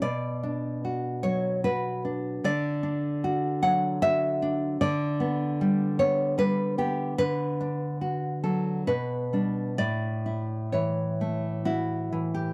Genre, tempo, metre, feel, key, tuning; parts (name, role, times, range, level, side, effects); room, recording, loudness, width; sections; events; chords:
romantic piece for solo classical guitar; 62-77 BPM; 3/4; rubato; D major; A4 = 440 Hz
nylon-string guitar; solo; 0.0-12.5 s; A2 to F#5; -28 LUFS; equal
light reverb; dry, close 1970s-style studio recording; -28 LUFS; mono
0.0-12.5 A section
0.0 Bm; 2.4 D; 4.8 G/D; 7.2 D; 8.9 G/B; 9.8 A